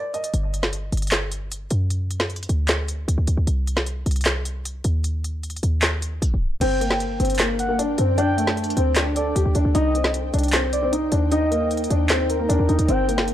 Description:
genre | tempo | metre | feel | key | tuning
hip hop, trap | 153 BPM | 4/4 | half-time | G harmonic minor | A4 = 438 Hz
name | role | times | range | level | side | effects
dark baby grand piano | melody | 0.0-0.3, 6.6-13.3 s | A3 to Eb5 | -23 LUFS | left 2 dB | low-pass filter, tape echo
deep house drum kit | drums | 0.1-13.3 s | crash cymbal, handclaps, hi-hat, snare drum | -24 LUFS | equal | none
short 808-style bass | bass | 0.3-13.3 s | G1 to F#2 | -22 LUFS | equal | none
gliding portamento lead | second line | 6.6-13.3 s | Bb4 to G5 | -28 LUFS | right 2 dB | chorus, tape echo
ethereal airy pad | sustained chords | 7.4-13.3 s | D4 to G5 | -31 LUFS | right 2 dB | ensemble chorus, built-in reverb, tremolo
room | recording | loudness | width
little or no reverb | dry, gritty hardware recording, cassette tape, tape stop | -19 LUFS | side -11 dB against mid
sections
0.0-6.6 A section; 6.6-13.3 B section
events
break 0.0-0.3; tape stop 6.2-6.6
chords
0.0 N.C.; 1.9 D; 3.5 Cm; 5.0 N.C.; 6.6 Gm; 8.2 Dsus4; 9.7 Cm; 11.3 Eb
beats
| 0.34 0.73 1.12 1.51 | 1.91 2.30 2.69 3.08 | 3.47 3.87 4.26 4.65 | 5.04 5.43 5.83 6.22 | 6.61 7.00 7.39 7.79 | 8.18 8.57 8.96 9.36 | 9.75 10.14 10.53 10.92 | 11.32 11.71 12.10 12.49 | 12.88 13.28

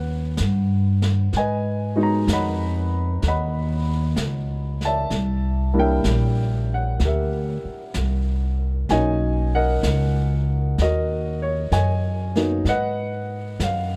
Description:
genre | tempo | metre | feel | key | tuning
jazz ballad | 64 BPM | 4/4 | swing 68% on 8ths | unclear | A4 = 440 Hz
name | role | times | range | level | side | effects
warm baby grand piano | accompaniment | 0.0-14.0 s | F#3 to B5 | -27 LUFS | equal | none
upright bass | bass | 0.0-14.0 s | Bb1 to G#2 | -24 LUFS | equal | none
jazz brush drum kit | drums | 0.4-14.0 s | brushed snare drum, hi-hat, snare drum | -34 LUFS | equal | none
room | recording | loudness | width
little or no reverb | dark, warm production | -22 LUFS | mono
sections
0.0-14.0 A section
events
none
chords
0.0 D#7alt; 1.3 G#m7; 5.1 C9; 8.9 Bmaj9; 12.6 G#m7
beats
0.38 | 1.32 2.27 3.22 4.17 | 5.11 6.05 6.99 7.93 | 8.87 9.81 10.75 11.69 | 12.64 13.58

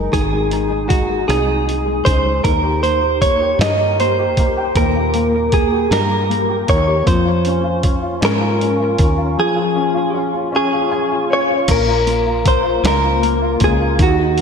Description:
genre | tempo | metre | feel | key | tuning
six-eight pop ballad | 52 BPM (dotted quarters) | 6/8 | straight | Bb minor | A4 = 439 Hz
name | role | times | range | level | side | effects
direct-recorded clean electric guitar | melody | 0.0-14.4 s | Gb4 to Eb5 | -17 LUFS | equal | wide subtle chorus, analog delay
warm concert grand piano | accompaniment | 0.0-14.4 s | Bb2 to Ab5 | -20 LUFS | left 2 dB | ensemble chorus
woody fretless electric bass | bass | 0.0-14.4 s | Gb1 to Ab2 | -20 LUFS | equal | none
boom bap sampler-style drum kit | drums | 0.1-14.4 s | crash cymbal, hi-hat, kick drum, rim click, snare drum | -19 LUFS | equal | none
room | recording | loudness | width
moderate lush hall reverb, RT60 2.0 s | dreamy mix soaked in reverb | -14 LUFS | side -6 dB against mid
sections
0.0-11.7 A section; 11.7-14.4 B section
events
grand piano fill 10.5-11.7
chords
0.0 Ab; 2.4 Ebadd9; 7.1 Db; 11.7 Bbm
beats
| 0.13 1.28 | 2.44 3.60 | 4.76 5.91 | 7.07 8.22 | 9.38 10.54 | 11.69 12.84 | 14.00

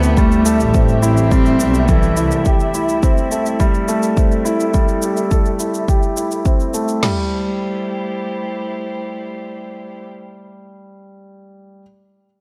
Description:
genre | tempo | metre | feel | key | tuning
piano and strings electronica | 105 BPM | 4/4 | straight | A minor | A4 = 440 Hz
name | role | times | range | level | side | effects
dark cello | melody | 0.0-2.5 s | E3 to C4 | -20 LUFS | equal | digital delay
dark string quartet | sustained chords | 0.0-10.1 s | A3 to E5 | -28 LUFS | equal | sidechain pumping, low-pass filter
warm concert grand piano | riff | 0.0-11.8 s | G3 to A4 | -23 LUFS | equal | digital delay
rich chamber double bass section | bass | 0.0-2.4 s | A1 to D2 | -20 LUFS | equal | sidechain pumping
shaker | drums | 0.0-7.0 s | none | -32 LUFS | equal | none
deep house drum kit | drums | 0.2-7.2 s | crash cymbal, kick drum, snare drum, toms | -18 LUFS | equal | none
room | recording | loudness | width
moderate recital hall reverb, RT60 1.8 s, studio reverb | dark, warm production | -17 LUFS | mono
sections
0.0-7.0 A section; 7.0-9.3 B section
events
filter sweep on string quartet 0.0-7.0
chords
0.0 Am7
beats
| 0.17 0.74 1.31 1.88 | 2.46 3.03 3.60 4.17 | 4.74 5.31 5.88 6.46 | 7.03 7.60 8.17 8.74

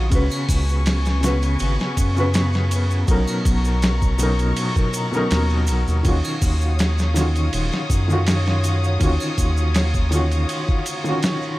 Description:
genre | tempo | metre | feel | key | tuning
trip hop | 81 BPM | 4/4 | swing 53% on 16ths | Eb minor | A4 = 440 Hz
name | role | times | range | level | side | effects
felt-muted upright piano | accompaniment | 0.0-11.6 s | B2 to Cb5 | -23 LUFS | equal | tremolo, vintage 12-bit sampler grit, tape echo
dark studio string section | sustained chords | 0.0-11.6 s | Cb4 to Eb6 | -29 LUFS | left 2 dB | none
round analog bass | bass | 0.0-10.5 s | Eb1 to Gb2 | -20 LUFS | equal | none
dusty soul sampler-style drum kit | drums | 0.1-11.4 s | hi-hat, kick drum, ride cymbal, snare drum | -23 LUFS | equal | none
tube shaker and triangle | percussion | 0.1-11.4 s | none | -34 LUFS | right 2 dB | tape echo
room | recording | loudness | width
small room ambience | echo-heavy mix, vinyl crackle | -17 LUFS | side -18 dB against mid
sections
0.0-11.6 A section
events
none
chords
0.1 Db7sus4; 3.1 Bmaj9; 6.0 Ebm9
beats
| 0.12 0.86 1.60 2.34 | 3.08 3.82 4.56 5.30 | 6.04 6.79 7.53 8.27 | 9.01 9.75 10.49 11.23

